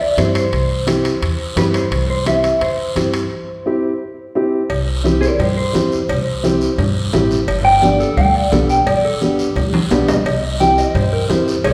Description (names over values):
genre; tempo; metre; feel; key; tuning
latin, cumbia; 173 BPM; 4/4; straight; C major; A4 = 437 Hz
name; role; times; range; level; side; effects
mellow electric guitar; melody; 0.0-11.7 s; G4 to G5; -20 LUFS; equal; spring reverb
dark upright piano; accompaniment; 0.2-11.5 s; B3 to G4; -22 LUFS; equal; none
upright bass; bass; 0.2-11.7 s; G1 to G2; -23 LUFS; equal; none
congas; percussion; 0.2-11.7 s; none; -25 LUFS; equal; none
guiro; percussion; 0.2-11.7 s; none; -32 LUFS; equal; none
timbales and cowbell; percussion; 0.2-11.7 s; none; -29 LUFS; equal; none
room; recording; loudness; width
wet recital hall reverb, RT60 1.7 s; recorded in a church or concert hall; -16 LUFS; mono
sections
0.0-4.7 A section; 4.7-11.7 B section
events
break 3.3-4.7; clean electric guitar solo 4.7-11.7; drum fill 9.7-10.3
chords
0.0 C; 7.5 G; 10.3 C